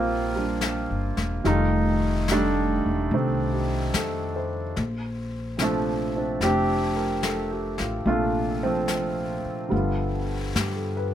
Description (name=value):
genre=jazz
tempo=72 BPM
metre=4/4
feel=swing 69% on 8ths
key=Bb major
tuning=A4 = 436 Hz
part: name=warm grand piano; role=accompaniment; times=0.0-11.1 s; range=Bb2 to C5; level=-25 LUFS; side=right 1 dB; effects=none
part: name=upright bass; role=bass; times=0.0-11.1 s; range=E1 to G2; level=-27 LUFS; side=left 1 dB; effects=none
part: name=jazz brush drum kit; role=drums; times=0.6-11.1 s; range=brushed snare drum, hi-hat, snare drum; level=-33 LUFS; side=left 4 dB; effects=none
room=light reverb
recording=none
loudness=-23 LUFS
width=side -10 dB against mid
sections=0.0-11.1 A section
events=none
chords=0.0 Eb6; 1.4 F9; 4.8 Bbmaj9; 9.7 G7